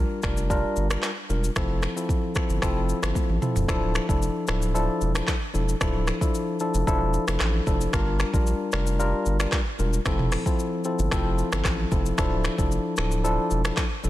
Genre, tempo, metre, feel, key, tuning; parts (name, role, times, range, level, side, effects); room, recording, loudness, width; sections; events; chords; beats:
afrobeats; 113 BPM; 4/4; straight; D minor; A4 = 438 Hz
tine electric piano; accompaniment; 0.0-14.1 s; F3 to Bb4; -27 LUFS; left 2 dB
saturated sub bass; bass; 0.0-14.1 s; D1 to Bb1; -26 LUFS; equal
afro-pop drum kit; drums; 0.2-14.1 s; finger snaps, handclaps, hi-hat, kick drum, rim click, shaker, toms; -27 LUFS; equal; vintage 12-bit sampler grit, soft clipping on snare
digital ambience; dense, heavily limited modern master; -22 LUFS; side -15 dB against mid
0.0-3.7 A section; 3.7-14.1 B section
drum fill 3.2-3.7
0.0 Gm7; 1.6 Fmaj7; 3.7 Dmadd9; 7.9 Gm7; 10.1 Fmaj7; 12.2 Dmadd9
0.50 1.03 | 1.56 2.09 2.62 3.15 | 3.69 4.22 4.75 5.28 | 5.81 6.34 6.87 7.40 | 7.93 8.46 8.99 9.53 | 10.06 10.59 11.12 11.65 | 12.18 12.71 13.24 13.77